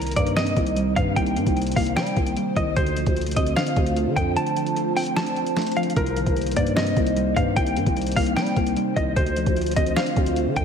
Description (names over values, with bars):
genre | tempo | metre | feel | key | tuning
hip hop, trap | 150 BPM | 4/4 | half-time | unclear | A4 = 440 Hz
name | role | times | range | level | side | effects
semi-hollow electric guitar | melody | 0.0-10.6 s | Bb4 to A5 | -26 LUFS | equal | tremolo, low-pass filter, ping-pong delay
muted felt-like synth keys | accompaniment | 0.0-10.6 s | C3 to D4 | -27 LUFS | equal | chorus, low-pass filter
airy breathy pad | sustained chords | 0.0-10.6 s | C3 to C5 | -28 LUFS | equal | chorus
growling 808-style bass | bass | 0.0-10.6 s | C2 to G3 | -26 LUFS | equal | none
lo-fi sampler-style drum kit | drums | 0.0-10.6 s | hi-hat, kick drum, snare drum | -26 LUFS | equal | none
room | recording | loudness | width
moderate lush hall reverb, RT60 2.2 s | dreamy mix soaked in reverb | -20 LUFS | side -7 dB against mid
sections
0.0-10.6 A section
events
kick muted 4.4-6.0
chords
0.0 Cm7; 2.8 Dm7; 6.0 Cm7; 9.2 Dm7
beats
0.36 0.77 | 1.17 1.56 1.97 2.37 | 2.77 3.17 3.56 3.96 | 4.37 4.76 5.17 5.57 | 5.96 6.37 6.76 7.17 | 7.57 7.96 8.37 8.77 | 9.16 9.56 9.96 10.37